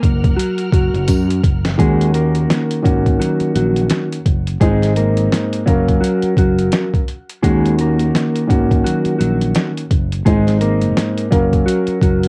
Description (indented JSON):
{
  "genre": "hip hop, boom-bap hip-hop",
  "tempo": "85 BPM",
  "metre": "4/4",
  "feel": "swing 58% on 16ths",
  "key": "Eb dorian",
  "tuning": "A4 = 441 Hz",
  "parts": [
    { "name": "mellow electric guitar", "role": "melody", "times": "0.0-12.3 s", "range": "Gb3 to Bb4", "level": "-22 LUFS", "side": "equal", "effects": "high-pass filter, low-pass filter, cassette tape, analog delay" },
    { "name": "bright studio string section", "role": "sustained chords", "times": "0.0-1.8 s", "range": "Bb4 to F6", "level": "-34 LUFS", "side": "equal", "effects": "high-pass filter, low-pass filter, cassette tape" },
    { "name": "fretless electric bass", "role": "bass", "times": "0.0-12.3 s", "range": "Gb1 to Gb2", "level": "-21 LUFS", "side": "equal", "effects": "none" },
    { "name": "boom bap sampler-style drum kit", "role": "drums", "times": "0.0-12.3 s", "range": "hi-hat, kick drum, snare drum", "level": "-20 LUFS", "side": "equal", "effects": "cassette tape" },
    { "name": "tambourine", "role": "percussion", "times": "1.1-1.3 s", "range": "none", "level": "-36 LUFS", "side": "equal", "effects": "none" },
    { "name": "dark grand piano", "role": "accompaniment", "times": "1.8-12.3 s", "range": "Ab2 to F5", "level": "-20 LUFS", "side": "equal", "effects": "cassette tape, high-pass filter, low-pass filter" }
  ],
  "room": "light reverb",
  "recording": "home recording on cassette",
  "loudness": "-16 LUFS",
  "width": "mono",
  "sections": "0.0-1.8 A section; 1.8-12.3 B section",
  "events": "break 0.0-1.8; drum fill 1.1-1.8",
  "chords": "0.0 Gbmaj7; 1.8 Ebm7; 4.6 Ab; 5.7 Gbmaj7; 7.4 Ebm7; 10.3 Ab; 11.3 Gbmaj7"
}